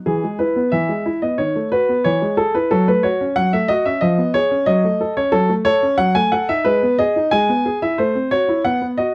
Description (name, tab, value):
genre	classical-period piano sonatina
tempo	91 BPM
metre	2/4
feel	straight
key	E major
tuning	A4 = 440 Hz
part	warm grand piano	solo	0.1-9.1 s	D#3 to G#5	-18 LUFS	equal	none
room	light reverb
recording	dark, warm production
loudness	-18 LUFS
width	mono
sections	0.1-9.1 A section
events	none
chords	0.1 E; 1.4 B7/D#; 2.1 E; 2.7 F#m; 4.0 C#7/E#; 4.7 F#m; 6.0 D#dim/F#; 6.7 G#m; 7.3 E/G#; 8.0 F#m7b5/A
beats	| 0.07 0.73 | 1.40 2.06 | 2.72 3.38 | 4.03 4.68 | 5.34 6.00 | 6.66 7.32 | 7.99 8.65